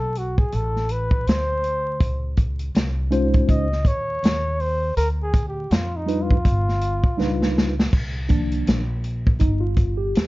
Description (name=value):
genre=hip hop, jazz-hop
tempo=81 BPM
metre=4/4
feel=swing 58% on 16ths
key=C phrygian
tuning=A4 = 440 Hz
part: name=breathy flugelhorn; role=melody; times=0.0-7.9 s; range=Eb4 to Eb5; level=-26 LUFS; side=equal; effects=none
part: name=upright bass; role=bass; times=0.0-10.3 s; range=G1 to F2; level=-25 LUFS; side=equal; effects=none
part: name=vintage drum kit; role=drums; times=0.2-10.3 s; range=crash cymbal, hi-hat, kick drum, snare drum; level=-20 LUFS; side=equal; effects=none
part: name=mellow tine electric piano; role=accompaniment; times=3.1-10.3 s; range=Eb3 to C5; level=-23 LUFS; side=equal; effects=medium stereo tremolo
room=light reverb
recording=dark, warm production, vinyl crackle, nothing above 7.6 kHz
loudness=-19 LUFS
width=side -19 dB against mid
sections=0.0-7.9 A section; 7.9-10.3 A section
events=flugelhorn solo 0.0-7.9; drum fill 7.2-7.9; tine electric piano solo 7.9-10.3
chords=0.0 D7(no3); 2.0 Dbmaj9; 5.0 G7b13/D; 6.4 G7b13; 7.9 Cm11